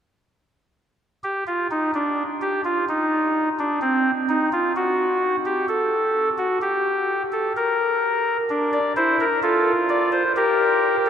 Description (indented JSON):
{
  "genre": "classical, baroque-style 3-part fugue for pipe organ",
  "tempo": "64 BPM",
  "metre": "4/4",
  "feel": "straight",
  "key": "unclear",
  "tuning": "A4 = 440 Hz",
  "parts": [
    { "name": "chamber organ, soft reed", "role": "solo", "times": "1.2-11.1 s", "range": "C4 to D5", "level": "-19 LUFS", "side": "equal", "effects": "none" }
  ],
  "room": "wet cathedral reverb, RT60 6.5 s",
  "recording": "none",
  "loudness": "-19 LUFS",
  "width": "side -8 dB against mid",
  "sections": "1.0-11.1 A section",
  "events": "none",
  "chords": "1.0 N.C.; 8.5 Dm; 10.4 Gm",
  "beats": "| 1.00 1.94 2.88 3.82 | 4.76 5.69 6.62 7.56 | 8.50 9.43 10.36"
}